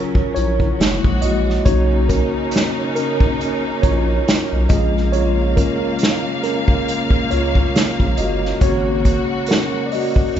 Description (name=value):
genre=R&B, neo-soul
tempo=69 BPM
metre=4/4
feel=swing 58% on 16ths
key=unclear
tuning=A4 = 439 Hz
part: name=mellow tine electric piano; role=accompaniment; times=0.0-10.4 s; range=Gb3 to Gb5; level=-20 LUFS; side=equal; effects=medium stereo tremolo
part: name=rich studio string section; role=sustained chords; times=0.0-10.4 s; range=Db3 to F5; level=-24 LUFS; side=equal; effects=none
part: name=unplugged drum kit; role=drums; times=0.1-10.4 s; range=hi-hat, kick drum, snare drum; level=-18 LUFS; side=equal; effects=none
part: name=round analog bass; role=bass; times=0.4-10.4 s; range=Gb1 to Eb2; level=-20 LUFS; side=equal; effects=none
room=moderate recital hall reverb, RT60 1.6 s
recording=recorded in a church or concert hall, nothing above 7.7 kHz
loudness=-15 LUFS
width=side -10 dB against mid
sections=0.0-10.4 A section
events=tine electric piano solo 0.0-10.4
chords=0.0 Ebm9 (rootless); 0.8 Gb9; 1.7 Bmaj9; 4.7 Bbm7; 8.6 Ab9sus4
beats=0.79 | 1.66 2.53 3.40 4.26 | 5.13 6.00 6.87 7.74 | 8.61 9.48 10.35